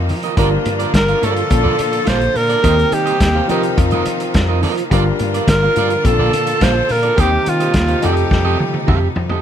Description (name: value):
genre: disco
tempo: 106 BPM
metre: 4/4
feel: straight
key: unclear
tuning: A4 = 441 Hz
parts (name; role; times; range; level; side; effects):
- breathy alto saxophone; melody; 0.0-8.9 s; F4 to C5; -18 LUFS; right 1 dB; none
- warm grand piano; accompaniment; 0.0-9.4 s; Bb2 to Bb4; -23 LUFS; left 5 dB; none
- bright studio string section; sustained chords; 0.0-9.4 s; C3 to A4; -24 LUFS; equal; none
- slap bass with an envelope filter; bass; 0.0-9.3 s; G1 to F3; -19 LUFS; equal; none
- electric guitar at the edge of break-up; accompaniment; 0.1-9.4 s; F4 to F5; -23 LUFS; right 10 dB; tube saturation
- vintage drum kit; drums; 0.1-9.4 s; hi-hat, kick drum, snare drum, toms; -18 LUFS; equal; none
room: little or no reverb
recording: none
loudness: -13 LUFS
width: side -9 dB against mid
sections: 0.0-9.4 A section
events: drum fill 8.3-9.4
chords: 0.4 Gm7; 1.5 Bbmaj7; 2.6 Eb6; 3.5 F7sus4; 4.9 Gm7; 6.0 Bbmaj7; 7.2 Eb6; 8.0 F9